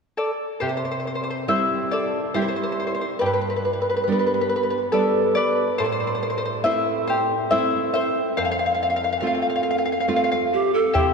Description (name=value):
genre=andean folk, Andean ensemble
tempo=70 BPM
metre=3/4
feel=straight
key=unclear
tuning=A4 = 440 Hz
part: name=charango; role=accompaniment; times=0.2-11.1 s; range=E4 to G5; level=-22 LUFS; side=left 2 dB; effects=none
part: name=nylon-string guitar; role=accompaniment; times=0.6-11.1 s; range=F2 to F4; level=-25 LUFS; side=right 3 dB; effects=none
part: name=breathy reedy large pan pipes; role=melody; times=10.5-11.1 s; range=G4 to A4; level=-20 LUFS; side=right 2 dB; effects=none
part: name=bombo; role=percussion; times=11.0-11.1 s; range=none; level=-22 LUFS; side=left 1 dB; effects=none
room=wet cathedral reverb, RT60 5.9 s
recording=recorded in a church or concert hall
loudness=-20 LUFS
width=side -4 dB against mid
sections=0.6-11.0 A section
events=charango solo 0.6-11.0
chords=0.0 N.C.; 0.6 C; 3.2 G; 5.8 Am; 8.4 F